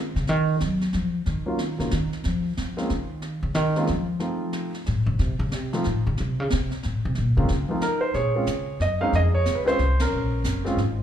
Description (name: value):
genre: jazz piano trio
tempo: 183 BPM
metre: 3/4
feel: swing 64% on 8ths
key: Bb minor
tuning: A4 = 439 Hz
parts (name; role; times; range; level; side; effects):
- upright bass; bass; 0.0-11.0 s; Gb1 to Gb3; -24 LUFS; equal; none
- jazz brush drum kit; drums; 0.2-11.0 s; brushed snare drum, hi-hat, ride cymbal, snare drum; -34 LUFS; right 2 dB; slapback echo
- warm concert grand piano; melody; 1.5-10.8 s; F3 to F5; -25 LUFS; right 1 dB; slapback echo
room: small room ambience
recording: live gig heard through the venue's PA, club reverb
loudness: -22 LUFS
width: side -10 dB against mid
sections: 0.0-8.2 A section; 8.2-11.0 B section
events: upright bass solo 0.0-8.2; band accent 10.0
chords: 0.3 Ebm; 2.2 N.C.; 4.2 F7; 7.2 Bbm; 7.8 N.C.; 8.2 Bbm7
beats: | 0.28 0.60 0.93 | 1.26 1.59 1.92 | 2.24 2.57 2.90 | 3.23 3.56 3.88 | 4.21 4.54 4.87 | 5.20 5.52 5.85 | 6.18 6.51 6.84 | 7.17 7.49 7.82 | 8.15 8.48 8.81 | 9.14 9.47 9.80 | 10.12 10.45 10.78